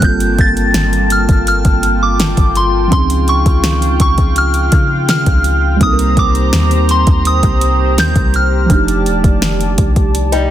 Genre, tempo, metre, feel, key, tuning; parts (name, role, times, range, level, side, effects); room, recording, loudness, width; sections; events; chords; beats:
contemporary R&B; 83 BPM; 4/4; straight; A4 = 440 Hz
soft synth bell; melody; 0.0-9.0 s; C6 to A6; -17 LUFS; equal; chorus, ping-pong delay
muted felt-like synth keys; accompaniment; 0.0-10.5 s; F3 to Bb4; -19 LUFS; right 5 dB; chorus
warm analog pad; sustained chords; 0.0-10.5 s; Bb3 to Bb5; -21 LUFS; left 2 dB; wide subtle chorus
soft 808-style bass; bass; 0.0-10.5 s; Eb1 to Db3; -15 LUFS; equal
smooth R&B drum kit; drums; 0.0-10.5 s; hi-hat, kick drum, snare drum; -14 LUFS; equal
fingerpicked old ladder-braced acoustic guitar; arpeggios; 10.3-10.5 s; G3 to Eb4; -14 LUFS; left 6 dB
little or no reverb; dense, heavily limited modern master; -10 LUFS; side -12 dB against mid
0.0-10.5 A section
0.0 Gm11; 2.9 Dbmaj9; 5.8 Cm7; 8.7 F13
| 0.03 0.75 1.47 2.19 | 2.92 3.64 4.36 5.09 | 5.81 6.53 7.25 7.98 | 8.70 9.42 10.15